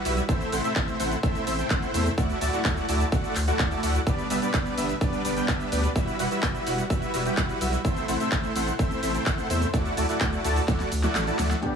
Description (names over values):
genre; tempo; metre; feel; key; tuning
EDM, festival progressive house; 127 BPM; 4/4; straight; unclear; A4 = 440 Hz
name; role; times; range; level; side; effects
dense compressed supersaw; riff; 0.0-11.8 s; G3 to A5; -26 LUFS; equal; sidechain pumping, low-pass filter, tape echo
saturated sub bass; bass; 0.1-11.5 s; D1 to E2; -29 LUFS; equal; tube saturation, sidechain pumping
big-room dance drum kit; drums; 0.1-11.7 s; handclaps, hi-hat, shaker, snare drum; -32 LUFS; equal; overdrive
electronic kick drum; drums; 0.3-10.8 s; none; -27 LUFS; equal; overdrive
warm grand piano; accompaniment; 11.6-11.8 s; G2 to G4; -29 LUFS; left 2 dB; sidechain pumping
impact; sound effects; 11.6-11.8 s; none; -32 LUFS; right 1 dB; none
room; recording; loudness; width
light reverb; none; -23 LUFS; side -6 dB against mid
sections
0.0-11.6 A section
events
drop 0.0-11.6; drum fill 10.7-11.6; kick drops out 11.2-11.6; band accent 11.5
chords
0.3 Am; 2.2 Dadd9; 4.1 G; 6.0 Emadd9; 7.8 Am; 9.7 Dadd9